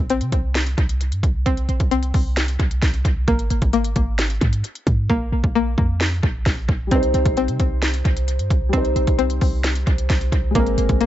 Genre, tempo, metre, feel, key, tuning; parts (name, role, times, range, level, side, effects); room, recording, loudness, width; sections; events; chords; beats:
hip hop, trap; 132 BPM; 4/4; half-time; C minor; A4 = 439 Hz
string-like resonator pluck; arpeggios; 0.0-11.1 s; Bb3 to C4; -23 LUFS; left 3 dB; chorus, tape echo
clean 808-style bass; bass; 0.0-11.1 s; Ab1 to C3; -21 LUFS; equal
trap drum kit; drums; 0.1-11.1 s; hi-hat, kick drum, snare drum; -21 LUFS; equal; tape echo
dark concert grand piano; accompaniment; 6.9-11.1 s; G3 to C5; -24 LUFS; equal
little or no reverb; echo-heavy mix, nothing above 7.8 kHz; -17 LUFS; side -13 dB against mid
0.0-11.1 A section
hi-hats muted 5.1-6.9
0.0 C5; 3.3 Absus2; 5.1 Bb5; 6.9 Cm; 10.6 Abadd9
0.10 0.55 1.01 | 1.46 1.92 2.37 2.82 | 3.28 3.73 4.19 4.64 | 5.10 5.55 6.01 6.46 | 6.92 7.37 7.82 8.28 | 8.73 9.19 9.64 10.10 | 10.55 11.01